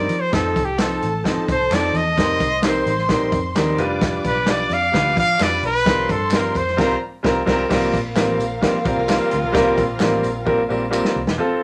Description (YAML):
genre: uptempo 1960s-style soul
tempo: 130 BPM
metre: 4/4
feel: straight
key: unclear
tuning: A4 = 439 Hz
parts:
  - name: bright trumpet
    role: melody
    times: 0.0-7.0 s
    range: G4 to F5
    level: -22 LUFS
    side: equal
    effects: none
  - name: clear baby grand piano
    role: accompaniment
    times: 0.0-11.6 s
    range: F3 to B4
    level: -23 LUFS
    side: equal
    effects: none
  - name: vintage muted picked electric bass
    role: bass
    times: 0.0-11.4 s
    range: E1 to F3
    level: -29 LUFS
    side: equal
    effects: none
  - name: swinging big-band drum kit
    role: drums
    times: 0.1-11.4 s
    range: crash cymbal, hi-hat, kick drum, snare drum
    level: -25 LUFS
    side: equal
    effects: none
  - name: tambourine and handclaps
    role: percussion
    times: 0.1-11.0 s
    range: none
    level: -37 LUFS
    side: equal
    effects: none
  - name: warm studio string section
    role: second line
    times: 0.3-11.4 s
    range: C4 to D6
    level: -30 LUFS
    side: equal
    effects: none
  - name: warm horn section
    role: second line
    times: 8.6-11.1 s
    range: C3 to F4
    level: -31 LUFS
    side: equal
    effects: none
room: moderate studio reverb, RT60 0.6 s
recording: none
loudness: -19 LUFS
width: mono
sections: 0.0-7.7 A section; 7.7-11.4 B section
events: trumpet solo 0.0-7.7; band accent 6.8-7.7; drum fill 10.5-11.4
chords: 0.3 F7; 2.2 Eb6/F; 3.8 G7/F; 5.9 C7sus4